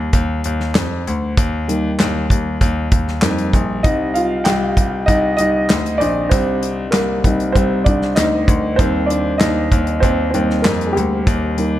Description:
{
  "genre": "piano-driven pop",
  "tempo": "97 BPM",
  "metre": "4/4",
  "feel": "straight",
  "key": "unclear",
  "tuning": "A4 = 440 Hz",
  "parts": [
    { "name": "warm upright piano", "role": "accompaniment", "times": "0.0-11.8 s", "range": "G3 to G5", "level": "-18 LUFS", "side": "right 1 dB", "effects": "none" },
    { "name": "bright concert grand piano", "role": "bass", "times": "0.0-11.8 s", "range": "Bb1 to F2", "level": "-20 LUFS", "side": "left 2 dB", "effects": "none" },
    { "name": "natural country drum kit", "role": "drums", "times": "0.1-11.7 s", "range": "handclaps, hi-hat, kick drum, snare drum", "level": "-17 LUFS", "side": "equal", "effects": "none" }
  ],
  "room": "light reverb, small room ambience",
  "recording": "dark, warm production",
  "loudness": "-14 LUFS",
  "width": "side -13 dB against mid",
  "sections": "0.0-11.8 A section",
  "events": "upright piano solo 0.0-11.8",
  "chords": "0.0 Eb; 3.8 Cm; 8.8 Eb"
}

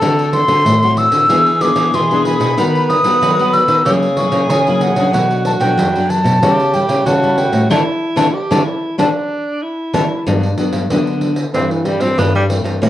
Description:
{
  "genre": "samba and choro",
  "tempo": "94 BPM",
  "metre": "4/4",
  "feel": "straight",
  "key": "G major",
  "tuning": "A4 = 440 Hz",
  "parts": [
    { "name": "wooden flute", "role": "melody", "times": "0.0-10.0 s", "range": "F#5 to E6", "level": "-16 LUFS", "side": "left 1 dB", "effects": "plate reverb" },
    { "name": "breathy tenor saxophone", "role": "second line", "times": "0.0-12.4 s", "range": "E3 to B4", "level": "-19 LUFS", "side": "right 1 dB", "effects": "none" },
    { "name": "nylon-string guitar", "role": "accompaniment", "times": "0.0-12.9 s", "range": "F#2 to G#4", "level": "-19 LUFS", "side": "left 2 dB", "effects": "none" },
    { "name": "nylon-string guitar", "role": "bass", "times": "0.0-12.9 s", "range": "G2 to G3", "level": "-18 LUFS", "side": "equal", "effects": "none" },
    { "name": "pandeiro", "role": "percussion", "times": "0.0-12.9 s", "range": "none", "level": "-21 LUFS", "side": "right 2 dB", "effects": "none" }
  ],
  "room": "moderate studio reverb, RT60 0.6 s",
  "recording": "worn, warbling old tape, cassette tape, warbly pitch drift",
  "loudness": "-12 LUFS",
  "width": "side -13 dB against mid",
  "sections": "0.0-10.3 A section; 10.3-12.9 B section",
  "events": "band accent 7.7-10.3; tenor saxophone solo 10.3-12.9",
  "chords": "0.0 D7; 1.3 E7; 2.6 B7/D#; 3.9 F#7/C#; 5.1 Bm7; 6.4 A7/C#; 7.7 Dsus2; 10.3 Gmaj7; 11.5 C6/G"
}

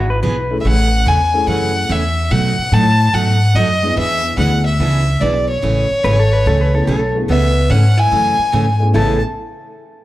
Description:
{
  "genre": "country, western swing",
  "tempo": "145 BPM",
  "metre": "4/4",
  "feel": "swing 67% on 8ths",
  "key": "A major",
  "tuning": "A4 = 441 Hz",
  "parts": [
    { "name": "pedal steel guitar", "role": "second line", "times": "0.0-0.6, 6.0-9.2 s", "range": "A4 to B4", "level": "-22 LUFS", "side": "left 1 dB", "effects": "slapback echo" },
    { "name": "picked steel-string acoustic guitar", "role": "accompaniment", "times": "0.0-9.2 s", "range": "A2 to G#4", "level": "-22 LUFS", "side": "right 4 dB", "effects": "none" },
    { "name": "upright bass", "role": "bass", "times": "0.0-9.2 s", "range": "G#1 to B2", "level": "-15 LUFS", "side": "equal", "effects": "none" },
    { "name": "dark upright piano", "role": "accompaniment", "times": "0.5-9.2 s", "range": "G#3 to B4", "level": "-24 LUFS", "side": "left 2 dB", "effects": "slapback echo" },
    { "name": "clear fiddle", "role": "melody", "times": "0.6-9.2 s", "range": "C#5 to A5", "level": "-18 LUFS", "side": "left 1 dB", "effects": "slapback echo" },
    { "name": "vintage hollow-body jazz guitar", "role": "second line", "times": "7.3-9.2 s", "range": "B3 to E4", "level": "-23 LUFS", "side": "equal", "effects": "none" }
  ],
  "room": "small room ambience",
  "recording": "live gig heard through the venue's PA, club reverb",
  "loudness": "-12 LUFS",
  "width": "side -15 dB against mid",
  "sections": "0.0-7.3 A section; 7.3-8.9 B section; 8.9-10.0 C section",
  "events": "none",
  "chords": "0.0 E7; 0.6 Amaj7; 2.3 B7; 4.0 E7; 5.6 Amaj9"
}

